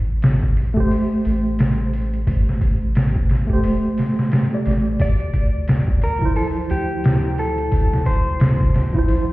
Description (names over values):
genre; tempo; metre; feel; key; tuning
trip hop; 88 BPM; 4/4; swing 59% on 16ths; D minor; A4 = 436 Hz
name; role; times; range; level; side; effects
soft dub sub bass; bass; 0.0-9.3 s; E1 to D2; -21 LUFS; equal; tube saturation
trip hop sampler-style drum kit; drums; 0.2-9.3 s; hi-hat, kick drum, snare drum; -19 LUFS; equal; none
tine electric piano; accompaniment; 0.7-9.3 s; F3 to D5; -23 LUFS; right 1 dB; medium stereo tremolo, low-pass filter, tape echo
clean electric guitar; melody; 5.0-9.3 s; G4 to D5; -25 LUFS; left 1 dB; vintage 12-bit sampler grit, dub echo
room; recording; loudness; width
light reverb; heard muffled through a wall, stone room reverb, vinyl crackle, EQ; -16 LUFS; side -19 dB against mid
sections
0.0-9.3 A section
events
none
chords
0.0 Am7; 5.0 Dm9